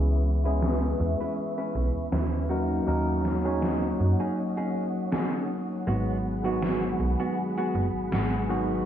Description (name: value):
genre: vaporwave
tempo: 80 BPM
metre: 4/4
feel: swing 54% on 16ths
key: G# minor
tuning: A4 = 440 Hz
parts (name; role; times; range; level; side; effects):
- bell-like tine electric piano; accompaniment; 0.0-8.9 s; D#3 to C#5; -29 LUFS; equal; medium stereo tremolo, wide subtle chorus, analog delay
- soft string machine; sustained chords; 0.0-8.9 s; G#4 to D#6; -36 LUFS; equal; phaser, ensemble chorus
- clean electric guitar; riff; 0.0-8.5 s; G#3 to B4; -33 LUFS; equal; wide subtle chorus, low-pass filter, analog delay
- slap-like FM bass; bass; 0.0-8.8 s; F#1 to F#2; -27 LUFS; equal; none
- electronic snare drum; drums; 0.6-8.3 s; none; -32 LUFS; equal; gated reverb, gated reverb snare, low-pass filter on snare, low-pass filter on room
room: light reverb, digital ambience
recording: low-pass filter, small room ambience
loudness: -24 LUFS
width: side -10 dB against mid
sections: 0.0-8.9 A section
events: filter sweep on drum 0.0-8.9; filter sweep on clean electric guitar 0.0-8.9; filter sweep 0.0-8.9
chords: 0.0 C#m7; 2.5 D#m7; 5.9 G#m7